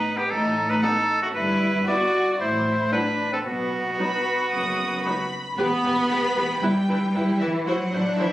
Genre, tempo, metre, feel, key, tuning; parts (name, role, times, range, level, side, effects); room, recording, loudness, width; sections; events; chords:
cinematic, playful, whimsical film cue; 115 BPM; 4/4; straight; E minor; A4 = 440 Hz
bright oboe; second line; 0.0-5.3 s; F#4 to D5; -24 LUFS; equal
rich studio violin section; second line; 0.0-8.3 s; A3 to F#4; -28 LUFS; equal
rich studio cello section; bass; 0.3-8.3 s; F#2 to B3; -25 LUFS; equal
rich studio double bass section; bass; 0.3-8.3 s; E1 to B1; -37 LUFS; equal
warm studio violin section; melody; 0.8-8.3 s; E5 to D#6; -30 LUFS; left 1 dB
clear studio viola section; accompaniment; 0.8-8.3 s; F#3 to C5; -29 LUFS; equal
moderate recital hall reverb, RT60 1.5 s; recorded on a phone in the room, club reverb, compression; -20 LUFS; side -15 dB against mid
0.0-5.6 A section; 5.6-8.3 B section
0.0 B7/A; 1.4 Em/G; 2.4 F#m7b5/A (rootless); 3.5 B; 5.6 Em; 6.6 Em/G; 7.7 F#m7b5